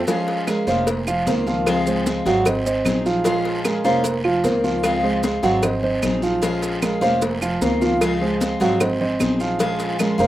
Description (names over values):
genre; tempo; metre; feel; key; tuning
latin, Cuban son and guajira; 151 BPM; 4/4; straight; Bb minor; A4 = 440 Hz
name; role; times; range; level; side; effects
upright bass; bass; 0.0-10.3 s; F1 to Db2; -29 LUFS; left 1 dB; none
picked steel-string acoustic guitar; accompaniment; 0.1-10.3 s; Db3 to Ab4; -23 LUFS; left 3 dB; none
dark grand piano; arpeggios; 0.1-10.3 s; F3 to Gb5; -21 LUFS; right 3 dB; slapback echo
congas; percussion; 0.1-10.3 s; none; -27 LUFS; left 2 dB; none
cowbell; percussion; 0.1-10.2 s; none; -28 LUFS; left 2 dB; none
guiro; percussion; 0.1-10.3 s; none; -34 LUFS; right 1 dB; none
maracas; percussion; 0.1-10.3 s; none; -34 LUFS; right 4 dB; none
claves; percussion; 0.5-10.2 s; none; -32 LUFS; right 4 dB; none
room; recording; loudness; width
little or no reverb; recorded outdoors, with no room sound; -18 LUFS; side -14 dB against mid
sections
0.1-10.3 A section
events
none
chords
0.1 Bbm7; 0.9 F7sus4; 1.7 Dbmaj7; 2.5 Ab7; 3.3 Bbm7; 4.0 F7sus4; 4.8 Dbmaj7; 5.6 Ab7; 6.4 Bbm7; 7.2 F7sus4; 8.0 Dbmaj7; 8.8 Ab7; 9.6 Bbm7